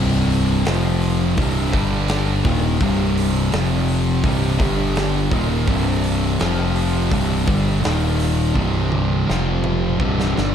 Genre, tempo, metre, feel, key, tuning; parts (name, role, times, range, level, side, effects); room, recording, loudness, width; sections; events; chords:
stoner and doom metal; 84 BPM; 4/4; straight; C minor; A4 = 440 Hz
string machine, violas; sustained chords; 0.0-10.5 s; C3 to G4; -32 LUFS; left 1 dB
sludgy distorted guitar; riff; 0.0-10.5 s; C2 to G3; -24 LUFS; left 1 dB; overdrive
thick fuzz guitar; riff; 0.0-10.5 s; C2 to G3; -23 LUFS; left 9 dB; distortion
thick fuzz guitar; riff; 0.0-10.5 s; C2 to G3; -23 LUFS; right 8 dB; distortion
growling picked electric bass; bass; 0.0-10.5 s; C1 to G1; -23 LUFS; equal; overdrive, tube saturation
big rock drum kit; drums; 0.3-10.5 s; hi-hat, kick drum, snare drum, toms; -25 LUFS; equal
little or no reverb; dark, warm production; -17 LUFS; side -8 dB against mid
0.0-10.5 A section
drum fill 8.6-10.5
0.0 C5; 0.7 F5; 1.4 C5; 1.7 G5; 2.5 Cm; 3.5 F5; 4.2 C5; 4.6 G5; 5.3 Cm; 6.4 F5; 7.1 C5; 7.8 Eb5; 8.6 C5; 9.3 F5; 10.0 C5